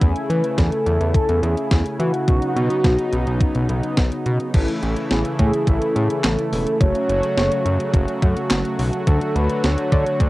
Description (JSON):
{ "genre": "synth-pop", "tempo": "106 BPM", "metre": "4/4", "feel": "straight", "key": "unclear", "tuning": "A4 = 440 Hz", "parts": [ { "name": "warm velvety synth lead", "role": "melody", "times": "0.0-10.3 s", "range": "F#4 to D5", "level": "-23 LUFS", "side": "equal", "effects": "chorus, cassette tape" }, { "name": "mellow synth brass", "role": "accompaniment", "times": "0.0-10.3 s", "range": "A3 to G#5", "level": "-28 LUFS", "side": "equal", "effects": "chorus" }, { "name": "brassy analog pad", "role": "sustained chords", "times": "0.0-10.3 s", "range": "C#3 to F#4", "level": "-25 LUFS", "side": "equal", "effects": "chorus" }, { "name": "fat analog bass", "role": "bass", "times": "0.0-10.3 s", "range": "E1 to E3", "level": "-21 LUFS", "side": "equal", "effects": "none" }, { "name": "clean 12-bit digital drum machine", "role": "drums", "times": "0.0-10.3 s", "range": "crash cymbal, handclaps, hi-hat, kick drum, snare drum", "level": "-19 LUFS", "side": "equal", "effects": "overdrive, cassette tape" } ], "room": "light reverb", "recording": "home recording on cassette", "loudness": "-17 LUFS", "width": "side -18 dB against mid", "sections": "0.0-4.5 A section; 4.5-10.3 B section", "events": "none", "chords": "0.0 Amaj7/E; 2.3 Badd9; 4.5 A; 6.8 F#m; 9.1 D", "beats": "| 0.01 0.58 1.15 1.71 | 2.28 2.85 3.41 3.98 | 4.54 5.11 5.67 6.24 | 6.81 7.37 7.94 8.51 | 9.07 9.64 10.20" }